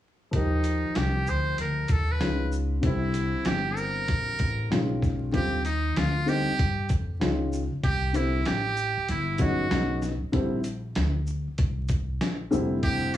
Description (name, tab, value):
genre	hip hop, jazz-hop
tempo	96 BPM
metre	4/4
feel	swing 63% on 16ths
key	unclear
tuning	A4 = 440 Hz
part	dark upright piano	accompaniment	0.3-13.2 s	Db3 to G4	-29 LUFS	left 2 dB	plate reverb
part	upright bass	bass	0.3-13.2 s	F1 to G2	-29 LUFS	equal	none
part	dusty soul sampler-style drum kit	drums	0.3-13.2 s	hi-hat, kick drum, shaker, snare drum	-28 LUFS	equal	none
part	trumpet with metal mute	melody	0.4-13.2 s	Eb4 to C5	-29 LUFS	right 2 dB	plate reverb
room	light reverb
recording	vinyl crackle, small room ambience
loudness	-24 LUFS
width	side -12 dB against mid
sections	0.3-5.3 A section; 5.3-13.2 B section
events	none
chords	0.3 Ebmaj9; 2.2 Db9; 2.8 C7; 4.7 Bmaj7; 5.3 Ebmaj9; 7.2 Dbadd9; 7.8 C; 9.7 B; 10.3 Bb; 12.5 Fmaj7sus2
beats	| 0.33 0.96 1.58 2.21 | 2.83 3.46 4.08 4.71 | 5.33 5.96 6.58 7.21 | 7.83 8.46 9.08 9.71 | 10.33 10.96 11.58 12.21 | 12.83